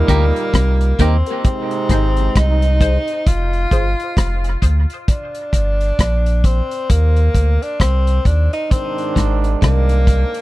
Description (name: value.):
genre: dub reggae.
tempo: 66 BPM.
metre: 4/4.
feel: swing 59% on 16ths.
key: unclear.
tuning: A4 = 441 Hz.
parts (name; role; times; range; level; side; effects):
clear tenor saxophone; melody; 0.0-10.4 s; Bb3 to F4; -22 LUFS; left 1 dB; dub echo.
bright trombone section; second line; 0.0-2.8, 8.7-10.0 s; Ab2 to Eb4; -24 LUFS; right 6 dB; high-pass filter, dub echo.
warm sub bass; bass; 0.0-10.2 s; F1 to Eb2; -15 LUFS; equal; none.
clean electric guitar; accompaniment; 0.1-1.2 s; Bb3 to G4; -25 LUFS; right 4 dB; dub echo.
clean electric guitar; riff; 0.1-2.2, 9.2-9.9 s; Ab2 to Eb3; -25 LUFS; left 5 dB; dub echo.
filtered dub chord stab; stabs; 0.1-5.7 s; D4 to C5; -29 LUFS; left 3 dB; phaser, high-pass filter, dub echo.
vintage drum kit; drums; 0.1-10.4 s; hi-hat, kick drum, rim click; -16 LUFS; equal; none.
room: little or no reverb.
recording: dry, close 1970s-style studio recording.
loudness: -14 LUFS.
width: side -18 dB against mid.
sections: 0.0-10.4 A section.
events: filter sweep 1.4-8.7.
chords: 0.0 Eb; 1.4 Ab; 3.3 Fm; 5.1 Gm; 6.9 Cm9; 8.7 Ab.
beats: 0.54 | 1.45 2.35 3.26 4.17 | 5.08 5.98 6.89 7.80 | 8.71 9.62.